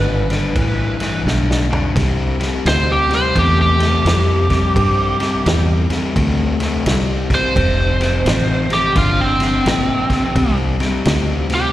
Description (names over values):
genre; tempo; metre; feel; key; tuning
electric blues shuffle; 86 BPM; 4/4; swing 63% on 8ths; C major; A4 = 439 Hz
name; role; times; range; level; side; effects
overdriven slide guitar; melody; 0.0-11.7 s; C4 to C5; -18 LUFS; right 1 dB; slapback echo
biting overdriven guitar; riff; 0.0-11.7 s; F2 to A3; -20 LUFS; left 4 dB; slapback echo
fingered electric bass; bass; 0.0-11.7 s; F1 to G2; -18 LUFS; right 1 dB; none
vintage drum kit; drums; 0.3-11.6 s; kick drum, ride cymbal, snare drum, toms; -22 LUFS; right 1 dB; none
room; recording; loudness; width
small room ambience; live gig heard through the venue's PA, recital hall reverb; -14 LUFS; side -14 dB against mid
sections
0.0-2.0 A section; 2.0-11.7 B section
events
drum fill 1.3-2.0; electric slide guitar solo 2.0-11.7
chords
0.0 Gadd9; 2.0 Cadd9; 7.6 Fadd9; 10.4 Csus2